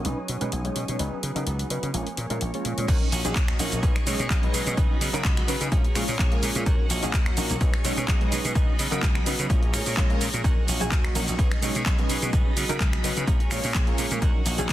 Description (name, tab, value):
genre	filtered disco house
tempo	127 BPM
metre	4/4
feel	swing 54% on 16ths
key	Eb minor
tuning	A4 = 436 Hz
part	overdriven reed electric piano	accompaniment	0.0-14.7 s	Gb3 to C#5	-31 LUFS	equal	fast tremolo, phaser, sidechain pumping, low-pass filter
part	string machine, full ensemble	sustained chords	0.0-14.7 s	Gb4 to Eb6	-35 LUFS	equal	ensemble chorus, sidechain pumping, low-pass filter
part	twelve-string electric guitar	riff	0.0-14.7 s	F3 to G#4	-34 LUFS	right 4 dB	sidechain pumping, low-pass filter
part	slap bass	bass	0.0-14.7 s	Bb1 to Db3	-30 LUFS	equal	tube saturation, sidechain pumping, low-pass filter
part	house drum kit	drums	0.0-14.7 s	cabasa, crash cymbal, finger snaps, handclaps, hi-hat	-30 LUFS	equal	sidechain pumping on hats, studio reverb, sidechain pumping on cymbals, sidechain pumping on perc, soft clipping on snare
part	electronic kick drum	drums	2.9-14.7 s	none	-23 LUFS	equal	studio reverb
room	little or no reverb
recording	dense, heavily limited modern master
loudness	-22 LUFS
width	side -14 dB against mid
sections	0.0-2.9 A section; 2.9-14.7 B section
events	filter sweep 0.0-2.9; drop 2.9-14.7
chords	0.0 B69; 1.0 Db9sus4; 1.9 Bbm7; 2.9 Ebm7; 3.8 B69; 4.8 Db9sus4; 5.7 Bbm7; 6.7 Ebm7; 7.6 B69; 8.6 Db9sus4; 9.5 Bbm7; 10.4 Ebm7; 11.4 B69; 12.3 Db9sus4; 13.3 Bbm7; 14.2 Ebm7